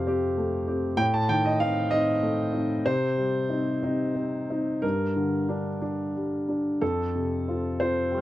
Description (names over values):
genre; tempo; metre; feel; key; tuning
neoclassical minimalist piano; 62 BPM (dotted quarters); 6/8; uneven beats, rubato; unclear; A4 = 440 Hz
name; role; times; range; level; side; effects
warm concert grand piano; solo; 0.0-8.2 s; F2 to F6; -24 LUFS; equal; none
room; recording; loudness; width
moderate booth ambience, RT60 0.2 s; cassette tape; -24 LUFS; side -14 dB against mid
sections
0.0-6.8 A section; 6.8-8.2 A section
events
none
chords
0.0 Fadd9; 1.0 Adim; 2.9 Cm; 4.8 Gm; 6.8 Fadd9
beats
0.06 | 0.98 1.92 | 2.86 3.83 | 4.83 5.82 | 6.81 7.78